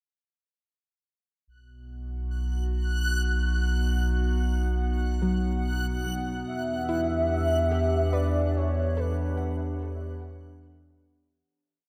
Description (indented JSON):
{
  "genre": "ambient",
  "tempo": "72 BPM",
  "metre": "3/4",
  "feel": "straight",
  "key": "unclear",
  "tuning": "A4 = 440 Hz",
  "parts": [
    { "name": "warbly tape-like pad", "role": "sustained chords", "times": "1.5-11.5 s", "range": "B2 to F#5", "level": "-36 LUFS", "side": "equal", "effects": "chorus, built-in reverb" },
    { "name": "warm sub bass", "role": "bass", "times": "1.5-11.4 s", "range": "B1 to E2", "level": "-30 LUFS", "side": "equal", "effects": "none" },
    { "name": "backwards swelling texture", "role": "texture", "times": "2.9-11.5 s", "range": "F#6", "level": "-39 LUFS", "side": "equal", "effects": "built-in reverb" },
    { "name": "soft round pluck", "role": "arpeggios", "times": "5.2-11.1 s", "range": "F#3 to F#5", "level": "-36 LUFS", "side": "equal", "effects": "analog chorus, diffuse ambient delay" },
    { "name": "warm velvety synth lead", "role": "melody", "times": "6.5-9.8 s", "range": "B4 to E5", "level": "-32 LUFS", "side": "equal", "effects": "chorus, diffuse ambient delay" }
  ],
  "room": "moderate huge ambient reverb, RT60 7.8 s",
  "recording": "in a vast, echoing space",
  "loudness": "-27 LUFS",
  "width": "mono",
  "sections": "1.5-11.5 A section",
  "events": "fade-in on ambient pad 1.5-11.5; fade-out on synth pluck 1.5-11.5; fade-out on synth texture 1.5-11.5; fade-out 8.1-11.5",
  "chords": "1.5 B; 6.5 Em7"
}